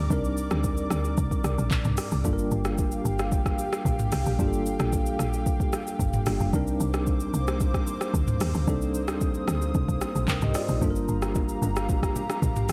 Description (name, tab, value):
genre	amapiano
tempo	112 BPM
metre	4/4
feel	straight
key	G minor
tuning	A4 = 440 Hz
part	tine electric piano	accompaniment	0.0-12.7 s	G3 to G5	-33 LUFS	equal	medium tremolo
part	airy breathy pad	sustained chords	0.0-12.7 s	Bb3 to Eb6	-37 LUFS	equal	chorus
part	woody log drum bass	bass	0.0-12.7 s	F1 to Eb2	-30 LUFS	equal	none
part	smooth R&B drum kit	drums	0.1-12.7 s	handclaps, hi-hat, kick drum, rim click, shaker, toms	-30 LUFS	equal	none
part	congas and bongos	percussion	10.8-12.6 s	none	-39 LUFS	equal	none
room	little or no reverb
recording	none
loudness	-26 LUFS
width	mono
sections	0.0-12.7 A section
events	none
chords	0.0 Cm9; 2.2 Gm7; 6.5 Cm9; 10.8 Gm7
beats	| 0.10 0.64 1.18 1.71 | 2.25 2.78 3.32 3.85 | 4.39 4.93 5.46 6.00 | 6.53 7.07 7.61 8.14 | 8.68 9.21 9.75 10.28 | 10.82 11.36 11.89 12.43